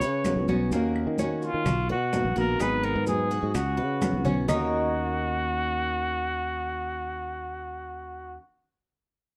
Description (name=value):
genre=latin, Cuban son and guajira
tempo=127 BPM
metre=4/4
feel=straight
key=Eb minor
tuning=A4 = 439 Hz
part: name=breathy trumpet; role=melody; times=0.0-8.4 s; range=F4 to Db5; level=-32 LUFS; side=equal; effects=none
part: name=Cuban tres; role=arpeggios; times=0.0-8.4 s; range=Bb3 to Db5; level=-36 LUFS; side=equal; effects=none
part: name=sustaining fretless electric bass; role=bass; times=0.0-8.4 s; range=Ab1 to Eb3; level=-33 LUFS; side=equal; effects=none
part: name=bongos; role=percussion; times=0.0-4.6 s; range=none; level=-40 LUFS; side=equal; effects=none
part: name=congas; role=percussion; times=0.0-4.6 s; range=none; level=-35 LUFS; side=equal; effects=none
part: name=maracas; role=percussion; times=0.0-4.6 s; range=none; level=-47 LUFS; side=equal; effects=none
part: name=fingerpicked steel-string acoustic guitar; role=accompaniment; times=0.2-8.4 s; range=Eb3 to Ab4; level=-33 LUFS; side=equal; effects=none
part: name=claves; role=percussion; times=0.2-4.6 s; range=none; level=-45 LUFS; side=equal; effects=none
room=moderate studio reverb, RT60 0.7 s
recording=dark, warm production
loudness=-27 LUFS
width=mono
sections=0.0-4.5 A section; 4.5-8.3 B section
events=drum fill 4.0-4.5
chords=0.0 Db7sus4; 0.7 Ebm7; 1.7 Bmaj7; 2.6 Abm7; 3.5 Db7sus4; 4.5 Ebm7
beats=0.25 | 0.72 1.19 1.66 2.13 | 2.60 3.07 3.54 4.01 | 4.48 4.95 5.42 5.90 | 6.37 6.84 7.31 7.78